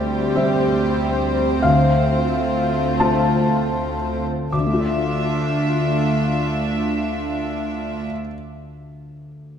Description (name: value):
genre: cinematic, emotional film score for orchestra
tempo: 38-50 BPM (dotted quarters)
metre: 6/8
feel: rubato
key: D minor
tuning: A4 = 440 Hz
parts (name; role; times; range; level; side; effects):
- warm symphonic violin section; second line; 0.0-8.1 s; F4 to E5; -24 LUFS; left 4 dB; none
- felt-muted upright piano; accompaniment; 0.0-9.6 s; D2 to D6; -22 LUFS; left 2 dB; none
- warm studio viola section; accompaniment; 0.0-8.1 s; G3 to D4; -25 LUFS; right 4 dB; none
- warm symphonic cello section; bass; 0.0-8.1 s; D2; -26 LUFS; right 3 dB; none
room: wet scoring stage reverb, RT60 2.2 s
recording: dark, warm production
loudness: -18 LUFS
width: side -8 dB against mid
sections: 0.0-4.5 A section; 4.5-7.6 B section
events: slowing down 0.0-4.5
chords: 0.0 C/D; 1.6 F/D; 4.5 Dmadd9